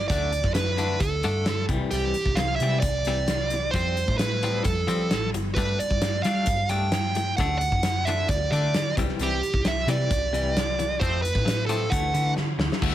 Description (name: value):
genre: quiet-loud alternative rock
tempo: 132 BPM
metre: 4/4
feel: straight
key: unclear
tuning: A4 = 439 Hz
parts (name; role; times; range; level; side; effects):
- dark smooth lead guitar; melody; 0.0-12.3 s; G4 to G5; -26 LUFS; right 3 dB; overdrive, plate reverb
- twangy electric guitar; arpeggios; 0.0-12.9 s; C3 to D4; -31 LUFS; left 5 dB; tremolo, plate reverb
- hollow-body short-scale picked electric bass; bass; 0.0-12.9 s; G1 to G3; -28 LUFS; equal; none
- big rock drum kit; drums; 0.1-12.9 s; crash cymbal, hi-hat, kick drum, snare drum; -28 LUFS; equal; none
- thick fuzz guitar; riff; 12.8-12.9 s; D3 to D4; -30 LUFS; left 1 dB; distortion
room: light reverb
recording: none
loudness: -22 LUFS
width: side -12 dB against mid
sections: 0.0-12.8 A section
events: drum fill 12.4-12.8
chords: 0.1 D; 1.7 C; 3.7 Fadd9; 5.6 Gsus2; 7.4 D; 9.0 C; 11.0 F; 11.9 Dadd9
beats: | 0.10 0.55 1.01 1.46 | 1.92 2.37 2.83 3.28 | 3.74 4.20 4.65 5.11 | 5.56 6.02 6.47 6.93 | 7.38 7.84 8.29 8.75 | 9.20 9.65 10.11 10.56 | 11.01 11.46 11.91 12.37 | 12.82